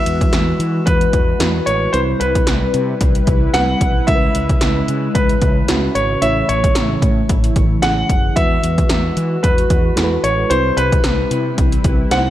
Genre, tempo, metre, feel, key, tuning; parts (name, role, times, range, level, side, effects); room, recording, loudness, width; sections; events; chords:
1980s-style pop; 112 BPM; 4/4; swing 55% on 16ths; E major; A4 = 439 Hz
clear concert grand piano; melody; 0.0-12.3 s; B4 to F#5; -20 LUFS; left 1 dB; digital delay
mellow FM electric piano; accompaniment; 0.0-12.3 s; G3 to C#5; -23 LUFS; right 2 dB; chorus
warm analog pad; sustained chords; 0.0-12.3 s; C3 to B4; -23 LUFS; left 1 dB; chorus, phaser
fretless electric bass; bass; 0.1-12.3 s; F#1 to E3; -21 LUFS; equal
80s electronic pad drums; drums; 0.1-12.3 s; hi-hat, kick drum, snare drum; -17 LUFS; equal
light reverb; dark, warm production; -13 LUFS; side -13 dB against mid
0.0-12.3 A section
0.0 Eadd9; 1.9 Cmaj7; 4.1 C#m7; 6.2 A; 8.4 Eadd9; 10.5 Cmaj7